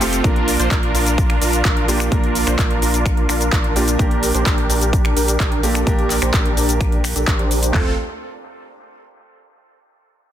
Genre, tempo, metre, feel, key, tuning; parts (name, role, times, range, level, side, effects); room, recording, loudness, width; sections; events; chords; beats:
EDM, festival progressive house; 128 BPM; 4/4; straight; F major; A4 = 440 Hz
warm grand piano; accompaniment; 0.0-7.9 s; Bb2 to Bb4; -24 LUFS; right 3 dB; sidechain pumping, dub echo
supersaw chords; riff; 0.0-7.9 s; C4 to C5; -22 LUFS; equal; sidechain pumping, low-pass filter, dub echo
saturated sub bass; bass; 0.0-8.0 s; F1 to Bb1; -22 LUFS; equal; sidechain pumping
big-room dance drum kit; drums; 0.0-7.7 s; finger snaps, handclaps, hi-hat, shaker; -22 LUFS; left 1 dB; overdrive
big-room dance drum kit; drums; 0.2-7.9 s; handclaps, kick drum, toms; -19 LUFS; equal; overdrive
little or no reverb; dense, heavily limited modern master; -15 LUFS; side -11 dB against mid
0.0-7.7 A section; 7.7-9.6 B section
filter sweep on supersaw synth 0.0-7.7
0.2 Bb; 4.0 Gm/Bb; 7.7 F
| 0.24 0.71 1.18 1.65 | 2.12 2.59 3.06 3.52 | 3.99 4.46 4.93 5.40 | 5.87 6.34 6.81 7.28 | 7.74